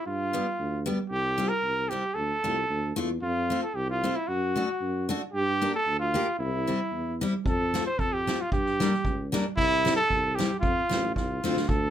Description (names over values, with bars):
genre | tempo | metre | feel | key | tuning
alpine folk, alpine dance band | 114 BPM | 2/4 | straight | F major | A4 = 439 Hz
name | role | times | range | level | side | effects
clear trumpet | melody | 0.0-11.9 s | E4 to C5 | -27 LUFS | right 1 dB | none
warm tuba | bass | 0.1-11.9 s | A1 to G2 | -32 LUFS | right 1 dB | none
picked steel-string acoustic guitar | accompaniment | 0.3-11.6 s | G3 to G4 | -30 LUFS | left 2 dB | none
soft-mallet drum kit | drums | 7.5-11.8 s | kick drum, snare drum | -30 LUFS | right 1 dB | none
room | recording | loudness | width
moderate small room ambience, RT60 0.5 s | minimal, uncompressed stereo recording | -25 LUFS | side -10 dB against mid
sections
0.0-11.7 A section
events
drum fill 11.2-11.7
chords
0.1 G7; 1.1 Csus4; 1.6 C7; 2.2 Dm; 3.2 F; 4.3 D/F#; 5.3 Gm; 6.4 C; 7.5 F; 8.5 Gm; 9.6 C; 10.6 F